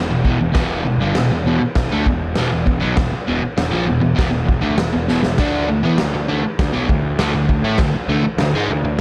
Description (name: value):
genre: garage rock duo or trio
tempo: 99 BPM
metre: 4/4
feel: straight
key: unclear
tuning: A4 = 440 Hz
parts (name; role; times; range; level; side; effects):
- crunchy overdriven guitar; riff; 0.0-9.0 s; E2 to E4; -21 LUFS; equal; none
- fuzz picked electric bass; bass; 0.0-9.0 s; E1 to A2; -26 LUFS; equal; overdrive
- raw garage drum kit; drums; 0.2-9.0 s; crash cymbal, kick drum, snare drum; -22 LUFS; equal; none
room: light reverb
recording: none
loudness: -18 LUFS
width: mono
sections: 0.0-9.0 A section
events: drum fill 5.1-5.4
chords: 0.0 E5; 5.4 D5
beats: | 0.56 1.17 1.77 2.37 | 2.98 3.58 4.19 4.79 | 5.39 6.00 6.60 7.20 | 7.81 8.41